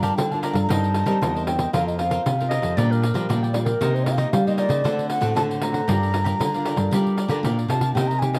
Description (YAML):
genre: samba and choro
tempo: 116 BPM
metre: 4/4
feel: straight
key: G minor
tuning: A4 = 439 Hz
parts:
  - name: baroque flute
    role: melody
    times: 0.0-8.4 s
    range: Bb4 to Bb5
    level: -28 LUFS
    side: equal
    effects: plate reverb
  - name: cavaquinho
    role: accompaniment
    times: 0.0-8.4 s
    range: D4 to G5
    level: -35 LUFS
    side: equal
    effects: none
  - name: nylon-string guitar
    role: accompaniment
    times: 0.0-8.4 s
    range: A2 to Bb4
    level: -32 LUFS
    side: equal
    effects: none
  - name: nylon-string guitar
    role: bass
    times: 0.0-8.4 s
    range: E2 to G3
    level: -25 LUFS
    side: equal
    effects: none
  - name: pandeiro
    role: percussion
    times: 0.0-8.4 s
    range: none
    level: -30 LUFS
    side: equal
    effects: none
  - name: warm clarinet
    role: second line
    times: 2.5-3.4 s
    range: Bb4 to Eb5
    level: -31 LUFS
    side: equal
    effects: none
room: moderate small room reverb, RT60 0.5 s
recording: dark, warm production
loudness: -22 LUFS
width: mono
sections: 0.0-8.0 A section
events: none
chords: 0.0 Gm7; 0.7 Cm7/G; 1.7 Fsus4; 2.8 Bb6; 3.8 Cm7; 4.8 D7; 5.9 Gm7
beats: 0.18 0.70 1.22 | 1.74 2.25 2.77 3.29 | 3.81 4.33 4.85 5.37 | 5.88 6.40 6.92 7.44 | 7.96